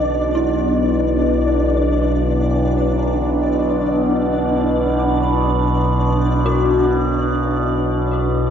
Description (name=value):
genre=dark ambient drone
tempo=free time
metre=none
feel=none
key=B minor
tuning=A4 = 440 Hz
part: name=dark analog pad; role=sustained chords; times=0.0-8.5 s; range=D4 to B4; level=-22 LUFS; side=right 2 dB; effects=lush chorus
part: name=overtone-sweeping drone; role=drone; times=0.0-8.5 s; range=B1 to B2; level=-17 LUFS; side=equal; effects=chorus, built-in reverb, phaser
part: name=flickering grainy texture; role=texture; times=0.0-8.5 s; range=D4 to D5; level=-25 LUFS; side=equal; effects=built-in reverb
part: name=dark detuned synth bell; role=arpeggios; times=0.3-8.5 s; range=E4 to F#4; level=-24 LUFS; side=left 4 dB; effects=chorus, phaser, diffuse ambient delay
room=wet cathedral reverb, RT60 4.9 s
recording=none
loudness=-15 LUFS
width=side -8 dB against mid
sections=0.0-8.5 A section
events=fade-out on analog synth pad 0.0-8.5; fade-out on synth texture 0.0-8.5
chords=0.0 Bm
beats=free time